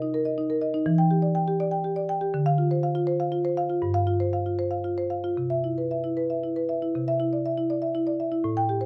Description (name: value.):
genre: classical, contemporary piece for solo marimba.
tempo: 75-83 BPM (dotted quarters).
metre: 6/8.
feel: rubato.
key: C major.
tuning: A4 = 441 Hz.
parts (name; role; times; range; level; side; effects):
marimba with medium mallets; solo; 0.0-8.9 s; G2 to G5; -26 LUFS; equal; none.
room: light reverb.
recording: none.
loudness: -26 LUFS.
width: mono.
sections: 0.0-6.9 A section; 6.9-8.9 A section.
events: none.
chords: 0.0 Cm7; 0.9 Em7; 2.3 Dm7; 3.8 G7sus4; 5.4 Cmaj7; 6.9 Cadd9.